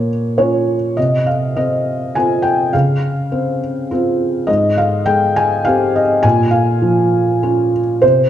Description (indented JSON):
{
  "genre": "neoclassical minimalist piano",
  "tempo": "102 BPM",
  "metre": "3/4",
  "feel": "rubato",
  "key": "unclear",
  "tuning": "A4 = 440 Hz",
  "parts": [
    { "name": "felt-muted upright piano", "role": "solo", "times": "0.0-8.3 s", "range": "Ab2 to Ab5", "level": "-13 LUFS", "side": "equal", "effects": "none" }
  ],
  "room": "wet recital hall reverb, RT60 1.4 s",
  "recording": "recorded in a church or concert hall",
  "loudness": "-13 LUFS",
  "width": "side -10 dB against mid",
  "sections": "0.0-8.3 A section",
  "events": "none",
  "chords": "0.0 Bbm; 1.0 F5/C; 2.7 Dbmaj7; 4.5 Abmaj7; 6.2 Bbm",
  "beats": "0.37 | 0.97 1.56 2.15 | 2.73 3.31 3.90 | 4.48 5.07 5.65 | 6.24 6.83 7.43 | 8.03"
}